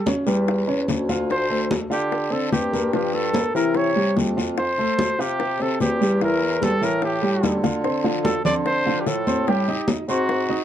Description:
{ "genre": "Afro-Cuban jazz", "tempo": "147 BPM", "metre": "4/4", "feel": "straight", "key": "unclear", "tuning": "A4 = 443 Hz", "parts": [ { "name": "mellow trumpet", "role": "melody", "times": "0.0-10.6 s", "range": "F#4 to D5", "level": "-24 LUFS", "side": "right 1 dB", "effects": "none" }, { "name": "warm upright piano", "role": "accompaniment", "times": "0.1-10.6 s", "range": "E3 to Eb6", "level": "-24 LUFS", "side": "left 1 dB", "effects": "none" }, { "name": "bongos", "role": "percussion", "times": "0.1-10.6 s", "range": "none", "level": "-28 LUFS", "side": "left 6 dB", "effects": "none" }, { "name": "congas", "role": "percussion", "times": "0.1-10.6 s", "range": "none", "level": "-27 LUFS", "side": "left 1 dB", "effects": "none" }, { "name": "guiro", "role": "percussion", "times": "0.1-10.6 s", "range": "none", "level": "-36 LUFS", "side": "left 5 dB", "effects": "none" }, { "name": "mellow bassoon", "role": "bass", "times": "0.3-10.6 s", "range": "D2 to D3", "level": "-26 LUFS", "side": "right 1 dB", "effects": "none" } ], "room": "moderate booth ambience, RT60 0.2 s", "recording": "dark, warm production", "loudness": "-19 LUFS", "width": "side -10 dB against mid", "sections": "0.0-7.8 A section; 7.8-10.6 B section", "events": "drum fill 7.4-7.8", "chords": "0.0 A7b13 (rootless); 1.3 Dm7; 2.9 Gm7; 3.8 C; 4.6 Fmaj9; 6.2 Edim; 7.0 A5; 7.8 Dm7; 9.5 Am7b5" }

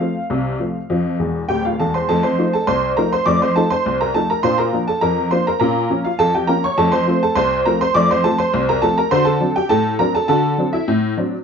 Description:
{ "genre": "ragtime piano", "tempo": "102 BPM", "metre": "2/4", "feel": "straight", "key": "F major", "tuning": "A4 = 438 Hz", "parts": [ { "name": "honky-tonk upright piano", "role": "solo", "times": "0.0-11.3 s", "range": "D1 to D6", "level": "-15 LUFS", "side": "equal", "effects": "none" } ], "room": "moderate studio reverb, RT60 0.8 s", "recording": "dark, warm production, nothing above 7.8 kHz", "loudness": "-15 LUFS", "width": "side -6 dB against mid", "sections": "0.0-2.1 A section; 2.1-11.4 B section", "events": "honky-tonk piano fill 1.2-2.1", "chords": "0.0 F; 2.1 F7; 4.4 Bb; 5.6 Bbm; 6.8 F; 9.1 D7" }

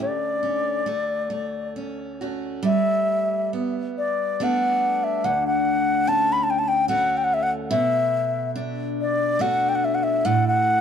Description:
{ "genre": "celtic folk, Celtic slow air", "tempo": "66-74 BPM", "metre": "3/4", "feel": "rubato", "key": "D major", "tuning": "A4 = 440 Hz", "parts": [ { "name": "baroque flute", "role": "melody", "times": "0.0-10.8 s", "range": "D5 to B5", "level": "-21 LUFS", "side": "left 2 dB", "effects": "plate reverb" }, { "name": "picked steel-string acoustic guitar", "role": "accompaniment", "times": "0.0-10.8 s", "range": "D2 to F#4", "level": "-26 LUFS", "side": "right 1 dB", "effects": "none" } ], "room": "moderate small room ambience, RT60 0.5 s", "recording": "none", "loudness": "-20 LUFS", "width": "side -8 dB against mid", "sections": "0.0-2.7 A section; 2.7-10.8 B section", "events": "none", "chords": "0.0 Dmaj7; 2.7 Gadd9; 5.2 Dmaj7; 7.7 Bm7; 10.3 A5" }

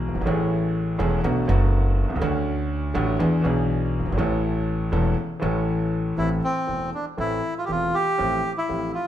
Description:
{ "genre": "tango", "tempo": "121 BPM", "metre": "4/4", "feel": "rubato", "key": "A major", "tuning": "A4 = 440 Hz", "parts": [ { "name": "warm concert grand piano", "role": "accompaniment", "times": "0.0-8.9 s", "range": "E1 to A4", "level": "-24 LUFS", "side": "equal", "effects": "none" }, { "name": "upright bass", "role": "bass", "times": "0.0-8.9 s", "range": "E1 to E2", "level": "-26 LUFS", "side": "equal", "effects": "none" }, { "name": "bandoneon", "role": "melody", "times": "6.2-9.1 s", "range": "C4 to G4", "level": "-24 LUFS", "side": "equal", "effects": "none" } ], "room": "moderate large studio reverb, RT60 1.3 s", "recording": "minimal, uncompressed stereo recording", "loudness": "-21 LUFS", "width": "side -11 dB against mid", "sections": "0.0-6.2 A section; 6.2-9.1 B section", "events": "none", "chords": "0.3 Amaj7; 1.2 Bm7; 2.2 Dmaj7; 3.2 E7; 4.2 A; 6.2 Am; 8.2 Fadd9/A" }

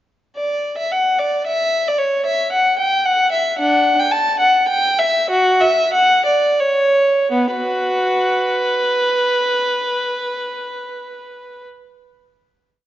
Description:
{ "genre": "classical, baroque-style suite movement for unaccompanied violin", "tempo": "81-115 BPM", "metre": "3/4", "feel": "rubato", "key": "B minor", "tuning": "A4 = 440 Hz", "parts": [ { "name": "rich violin", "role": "solo", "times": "0.4-11.6 s", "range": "B3 to A5", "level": "-15 LUFS", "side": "equal", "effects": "none" } ], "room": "wet recital hall reverb, RT60 1.8 s", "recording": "dark, warm production, nothing above 7.5 kHz", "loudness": "-14 LUFS", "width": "side -13 dB against mid", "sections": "0.4-7.3 A section; 7.3-11.5 final chord", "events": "slowing down 2.8-7.3", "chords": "none" }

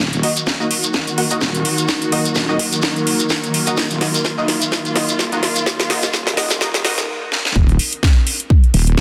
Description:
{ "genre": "bass house", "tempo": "127 BPM", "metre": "4/4", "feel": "swing 56% on 16ths", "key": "Eb minor", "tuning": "A4 = 440 Hz", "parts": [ { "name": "dark chamber string section", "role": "sustained chords", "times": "0.0-7.5 s", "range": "Eb3 to Gb4", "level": "-26 LUFS", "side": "equal", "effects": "sidechain pumping" }, { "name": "wobble bass", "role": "bass", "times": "0.0-9.0 s", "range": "Eb1 to Eb2", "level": "-22 LUFS", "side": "equal", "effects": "chorus, tube saturation, sidechain pumping, high-pass filter" }, { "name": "electronic kick drum", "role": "drums", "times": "0.0-9.0 s", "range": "none", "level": "-17 LUFS", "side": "equal", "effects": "high-pass filter on kick, high-pass filter on room" }, { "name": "house drum kit", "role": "drums", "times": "0.0-9.0 s", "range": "hi-hat, snare drum", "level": "-22 LUFS", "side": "equal", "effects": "none" }, { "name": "shekere", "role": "percussion", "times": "0.0-7.1 s", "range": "none", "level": "-26 LUFS", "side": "equal", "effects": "none" }, { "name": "warbly tape-like pad", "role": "texture", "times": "0.0-7.1 s", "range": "Eb4 to Bb4", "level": "-30 LUFS", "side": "equal", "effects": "chorus, built-in reverb, sidechain pumping" }, { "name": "band-passed chord stab", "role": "stabs", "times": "0.2-6.9 s", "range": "Bb3 to Gb5", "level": "-27 LUFS", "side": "equal", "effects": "lush chorus, sidechain pumping, dub echo" } ], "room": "light reverb, digital ambience", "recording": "dense, heavily limited modern master, high-pass filter", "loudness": "-17 LUFS", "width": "mono", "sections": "0.0-7.6 A section; 7.6-9.0 B section", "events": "build-up 0.0-7.6; drum fill 0.0-7.1, 7.3; filter sweep on synth stab 0.0-7.6; drop 7.6-9.0", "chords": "0.0 Ebm; 7.6 N.C." }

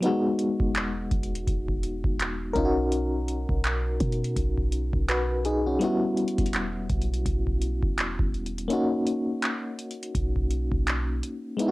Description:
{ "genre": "contemporary R&B", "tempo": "83 BPM", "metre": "4/4", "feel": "swing 58% on 16ths", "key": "B major", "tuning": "A4 = 438 Hz", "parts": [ { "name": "FM electric piano with tremolo", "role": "accompaniment", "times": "0.0-11.7 s", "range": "F#3 to B4", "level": "-27 LUFS", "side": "left 1 dB", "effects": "none" }, { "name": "booming analog drum machine", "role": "drums", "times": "0.0-11.7 s", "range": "handclaps, hi-hat, kick drum", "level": "-28 LUFS", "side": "equal", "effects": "cassette tape" }, { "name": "clean 808-style bass", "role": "bass", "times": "0.6-11.2 s", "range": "E1 to B2", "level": "-29 LUFS", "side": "equal", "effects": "none" } ], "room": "little or no reverb", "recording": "home recording on cassette", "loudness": "-24 LUFS", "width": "side -20 dB against mid", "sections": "0.0-11.7 A section", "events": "kick muted 8.7-10.1", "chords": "0.0 Emaj7; 2.6 Bmaj7; 5.8 Emadd9; 8.7 Bmaj7" }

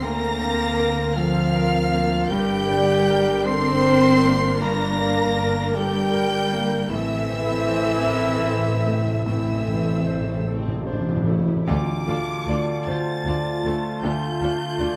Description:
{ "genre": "cinematic, emotional film score for orchestra", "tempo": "52 BPM (dotted quarters)", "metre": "6/8", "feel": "rubato", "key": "D minor", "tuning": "A4 = 440 Hz", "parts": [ { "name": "rich studio violin section", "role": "melody", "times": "0.0-15.0 s", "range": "D6 to C7", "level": "-33 LUFS", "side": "equal", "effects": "none" }, { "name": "concert flute", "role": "second line", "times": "0.0-15.0 s", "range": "E5 to C6", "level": "-32 LUFS", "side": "equal", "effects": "none" }, { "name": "mellow clarinet", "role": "second line", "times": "0.0-15.0 s", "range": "E4 to C5", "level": "-32 LUFS", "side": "equal", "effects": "none" }, { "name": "warm studio violin section", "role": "second line", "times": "0.0-14.9 s", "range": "F4 to C6", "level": "-36 LUFS", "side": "equal", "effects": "none" }, { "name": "clear baby grand piano", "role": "accompaniment", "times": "0.0-15.0 s", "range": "D2 to D5", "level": "-31 LUFS", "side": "equal", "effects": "none" }, { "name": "rich studio viola section", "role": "accompaniment", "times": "0.0-14.9 s", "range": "A3 to Bb4", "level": "-33 LUFS", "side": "equal", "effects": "none" }, { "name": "dark French horn section", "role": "sustained chords", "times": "0.0-15.0 s", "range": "E3 to F4", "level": "-29 LUFS", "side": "equal", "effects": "none" }, { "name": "concert harp", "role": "arpeggios", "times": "0.0-15.0 s", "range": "G2 to D5", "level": "-33 LUFS", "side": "equal", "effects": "none" }, { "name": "rich studio cello section", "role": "bass", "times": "0.0-14.9 s", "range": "D2 to C4", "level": "-30 LUFS", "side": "equal", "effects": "none" }, { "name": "rich studio double bass section", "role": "bass", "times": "0.0-14.9 s", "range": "G1 to D2", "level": "-31 LUFS", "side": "equal", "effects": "none" }, { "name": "timpani", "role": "percussion", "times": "6.9-11.6 s", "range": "A2", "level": "-29 LUFS", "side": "equal", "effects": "none" } ], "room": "moderate scoring stage reverb, RT60 1.5 s", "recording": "close, detailed microphones", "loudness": "-22 LUFS", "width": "mono", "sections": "0.0-11.7 A section; 11.7-15.0 B section", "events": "timpani fill 6.9-11.7", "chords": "0.0 Bbadd9/D; 2.3 Gm; 6.9 Am; 11.7 Dm" }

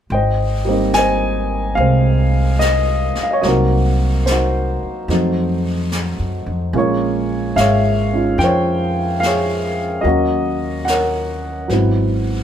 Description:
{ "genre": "jazz", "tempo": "73 BPM", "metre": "4/4", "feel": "swing 69% on 8ths", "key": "Ab major", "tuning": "A4 = 440 Hz", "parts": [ { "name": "warm upright piano", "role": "accompaniment", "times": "0.1-12.4 s", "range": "Gb3 to Ab5", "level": "-17 LUFS", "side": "equal", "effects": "none" }, { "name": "upright bass", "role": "bass", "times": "0.1-12.4 s", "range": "Ab1 to Gb2", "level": "-19 LUFS", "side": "equal", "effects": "none" }, { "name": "jazz brush drum kit", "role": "drums", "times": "0.1-12.4 s", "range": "brushed snare drum, hi-hat, snare drum", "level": "-29 LUFS", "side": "left 1 dB", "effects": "none" } ], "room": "moderate studio reverb, RT60 0.7 s", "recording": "band playing live in one room", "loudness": "-15 LUFS", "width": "side -9 dB against mid", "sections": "0.1-12.4 A section", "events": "none", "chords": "0.1 Abmaj7; 3.4 Cm7b5; 5.1 F7b9; 6.7 Bbm9; 10.0 Ebm7; 11.7 Ab7alt" }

